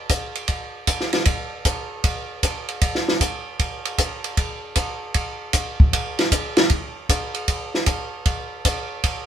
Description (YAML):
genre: jazz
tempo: 154 BPM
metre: 4/4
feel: swing 67% on 8ths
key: none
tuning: none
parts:
  - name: compact cocktail drum kit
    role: drums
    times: 0.1-9.2 s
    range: hi-hat, kick drum, ride cymbal, snare drum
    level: -20 LUFS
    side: equal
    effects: none
room: moderate club reverb, RT60 0.6 s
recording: minimal, uncompressed stereo recording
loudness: -20 LUFS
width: side -10 dB against mid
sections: 0.0-9.3 A section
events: none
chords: none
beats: 0.09 | 0.48 0.87 1.26 1.65 | 2.04 2.42 2.81 3.20 | 3.59 3.98 4.37 4.76 | 5.15 5.54 5.92 6.31 | 6.70 7.09 7.48 7.87 | 8.26 8.65 9.04